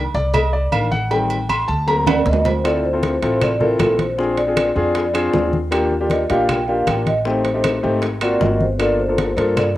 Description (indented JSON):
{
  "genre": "Afro-Cuban jazz",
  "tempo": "156 BPM",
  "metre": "4/4",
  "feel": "straight",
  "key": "D minor",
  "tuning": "A4 = 444 Hz",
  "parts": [
    { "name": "warm concert grand piano", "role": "accompaniment", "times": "0.0-9.6 s", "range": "Eb3 to C6", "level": "-20 LUFS", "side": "left 2 dB", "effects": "cassette tape, plate reverb" },
    { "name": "upright bass", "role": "bass", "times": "0.0-9.8 s", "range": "G1 to G2", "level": "-23 LUFS", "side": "equal", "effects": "none" },
    { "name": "cowbell and bongos", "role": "percussion", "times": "0.1-9.8 s", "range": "none", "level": "-28 LUFS", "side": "left 4 dB", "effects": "none" },
    { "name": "agogo bells and timbales", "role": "percussion", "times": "0.3-9.8 s", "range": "none", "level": "-25 LUFS", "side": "right 7 dB", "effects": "none" },
    { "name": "claves", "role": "percussion", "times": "0.3-9.8 s", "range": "none", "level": "-32 LUFS", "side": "right 3 dB", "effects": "none" },
    { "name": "congas", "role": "percussion", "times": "0.3-9.8 s", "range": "none", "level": "-25 LUFS", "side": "left 1 dB", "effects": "none" },
    { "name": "vibraphone with soft mallets", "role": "melody", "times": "2.1-9.8 s", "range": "A4 to G5", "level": "-21 LUFS", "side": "equal", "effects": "plate reverb" }
  ],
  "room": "moderate booth ambience, RT60 0.2 s",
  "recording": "home recording on cassette",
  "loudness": "-16 LUFS",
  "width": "side -15 dB against mid",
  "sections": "0.0-2.6 A section; 2.6-9.8 B section",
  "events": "grand piano solo 0.0-2.6; drum fill 2.1-2.6",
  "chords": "0.0 Cm9; 1.1 Am7b5; 1.9 D7b13; 2.6 Dm7; 4.2 Bb7; 5.7 Ebmaj7; 7.3 Am7b5; 8.0 G#13; 8.8 Gm7",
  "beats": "0.34 0.73 | 1.11 1.50 1.88 2.26 | 2.65 3.03 3.42 3.80 | 4.18 4.57 4.95 5.34 | 5.72 6.11 6.49 6.88 | 7.26 7.65 8.03 8.42 | 8.80 9.19 9.57"
}